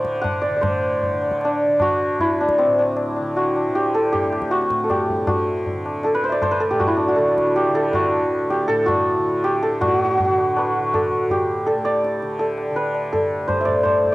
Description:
indian classical, Hindustani; 152-165 BPM; 3/4; straight; D raga khamaj; A4 = 439 Hz
santur; melody; 0.0-14.1 s; C4 to F#5; -18 LUFS; equal; cassette tape
tanpura; drone; 0.0-14.1 s; D2 to D3; -31 LUFS; right 1 dB; cassette tape
tabla; percussion; 0.0-14.1 s; -28 LUFS; left 1 dB
moderate spring reverb, RT60 2.7 s; home recording on cassette; -18 LUFS; side -19 dB against mid
0.6-9.8 A section; 9.8-14.1 B section
speeding up 0.0-14.1
0.24 | 0.63 1.02 1.42 | 1.80 2.19 2.58 | 2.97 3.36 3.74 | 4.13 4.51 4.90 | 5.28 5.66 6.04 | 6.42 6.80 7.18 | 7.56 7.93 8.31 | 8.69 9.06 9.44 | 9.81 10.18 10.55 | 10.92 11.29 11.66 | 12.03 12.39 12.76 | 13.13 13.49 13.85

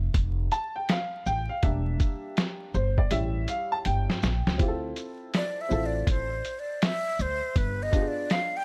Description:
hip hop, jazz-hop; 81 BPM; 4/4; swing 63% on 16ths; D minor; A4 = 440 Hz
warm upright piano; accompaniment; 0.0-8.5 s; G3 to A5; -34 LUFS; equal
upright bass; bass; 0.0-7.9 s; E1 to D2; -31 LUFS; equal
lo-fi sampler-style drum kit; drums; 0.1-8.5 s; hi-hat, kick drum, shaker, snare drum; -28 LUFS; equal
breathy jazz flute; melody; 5.4-8.6 s; B4 to G5; -32 LUFS; equal
small room ambience; vinyl crackle; -28 LUFS; mono
0.0-4.6 A section; 4.6-8.6 A section
upright piano solo 0.0-4.6; drum fill 3.1-4.6; flute solo 4.6-8.6
0.0 G7sus2; 1.6 Em7b5; 3.1 A7; 4.6 Dm9; 7.6 G7b9
0.15 0.89 | 1.63 2.37 3.11 3.85 | 4.59 5.33 6.08 6.82 | 7.56 8.30

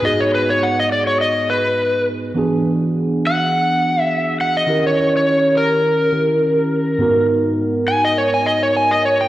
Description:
blues; 104 BPM; 4/4; swing 54% on 16ths; G# minor; A4 = 440 Hz
overdriven slide guitar; melody; 0.0-9.3 s; A#4 to G#5; -16 LUFS; equal; slapback echo
mellow tine electric piano; accompaniment; 0.0-9.3 s; G#2 to A#4; -19 LUFS; right 1 dB; phaser
moderate plate reverb, RT60 2.7 s; live gig heard through the venue's PA, recital hall reverb; -14 LUFS; side -14 dB against mid
0.0-9.3 A section
electric slide guitar solo 0.0-9.3
0.0 G#m7; 2.4 E7; 4.7 D#7b9; 7.0 G#m7
| 0.04 0.62 1.20 1.77 | 2.35 2.94 3.51 4.09 | 4.67 5.25 5.83 6.41 | 6.99 7.57 8.15 8.73

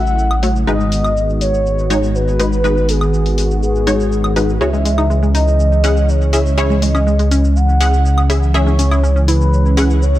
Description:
progressive house; 122 BPM; 4/4; straight; C# minor; A4 = 439 Hz
expressive portamento lead; melody; 0.0-10.2 s; G#4 to F#5; -20 LUFS; equal; lush chorus, digital delay
filtered supersaw swell; sustained chords; 0.0-10.2 s; C#3 to F#4; -20 LUFS; right 1 dB
wide unison pluck; stabs; 0.0-10.2 s; G#3 to F#5; -20 LUFS; left 1 dB; ensemble chorus, dub echo
dark detuned saw bass; bass; 0.0-10.2 s; G#1 to C#2; -15 LUFS; equal
electronic shaker, woodblock and hi-hat; drums; 0.1-10.2 s; -26 LUFS; left 2 dB; overdrive, low-pass filter on hats, low-pass filter on perc
analog pluck; arpeggios; 4.6-10.2 s; G#3 to G#4; -22 LUFS; equal; chorus, dub echo
little or no reverb; -12 LUFS; side -14 dB against mid
0.0-10.2 A section
filter sweep on synth pluck 0.0-10.2
0.0 A6; 0.7 G#m7; 4.6 C#m
0.18 | 0.67 1.17 1.66 2.15 | 2.64 3.13 3.62 4.12 | 4.61 5.10 5.59 6.08 | 6.58 7.07 7.56 8.05 | 8.54 9.04 9.53 10.02

